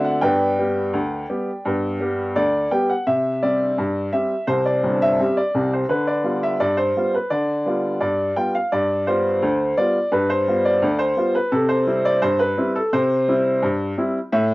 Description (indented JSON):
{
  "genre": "ragtime piano",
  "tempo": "85 BPM",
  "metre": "2/4",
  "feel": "straight",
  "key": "G major, C major from 3.1 s",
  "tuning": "A4 = 441 Hz",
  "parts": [
    { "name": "clear upright piano", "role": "solo", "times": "0.0-14.5 s", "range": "G1 to G5", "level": "-18 LUFS", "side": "equal", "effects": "cassette tape" }
  ],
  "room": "moderate studio ambience, RT60 0.5 s",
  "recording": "home recording on cassette",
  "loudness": "-18 LUFS",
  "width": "side -20 dB against mid",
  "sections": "0.0-3.1 A section; 3.1-14.5 B section",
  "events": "none",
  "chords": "0.2 G; 3.1 C5; 5.9 G7; 11.5 C"
}